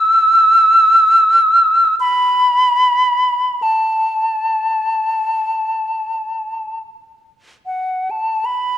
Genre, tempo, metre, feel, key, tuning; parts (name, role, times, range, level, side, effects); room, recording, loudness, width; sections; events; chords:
classical, free, expressive piece for unaccompanied flute; free time; A4 = 442 Hz
hollow concert flute; solo; 0.0-8.8 s; F#5 to E6; -12 LUFS; equal
moderate recital hall reverb, RT60 1.4 s; dark, warm production; -12 LUFS; side -10 dB against mid
0.0-8.4 A section